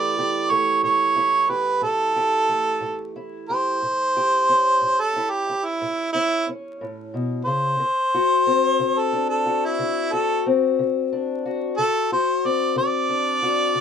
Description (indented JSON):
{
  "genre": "acoustic country blues, solo or duo",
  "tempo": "60 BPM (dotted quarters)",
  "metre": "12/8",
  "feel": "straight",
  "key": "unclear",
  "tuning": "A4 = 441 Hz",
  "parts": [
    { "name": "warm harmonica", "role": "melody", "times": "0.0-13.8 s", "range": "E4 to D5", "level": "-20 LUFS", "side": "right 2 dB", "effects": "none" },
    { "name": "fingerpicked steel-string acoustic guitar", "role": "accompaniment", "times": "0.0-13.8 s", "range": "A2 to G4", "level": "-25 LUFS", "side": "left 4 dB", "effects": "none" }
  ],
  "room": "moderate booth ambience, RT60 0.2 s",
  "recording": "minimal, uncompressed stereo recording, vinyl crackle",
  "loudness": "-19 LUFS",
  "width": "side -7 dB against mid",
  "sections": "0.0-13.8 A section",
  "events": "none",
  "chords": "0.0 A7; 7.8 D7",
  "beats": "0.85 1.84 2.83 | 3.83 4.82 5.81 6.81 | 7.80 8.80 9.79 10.79 | 11.78 12.77 13.77"
}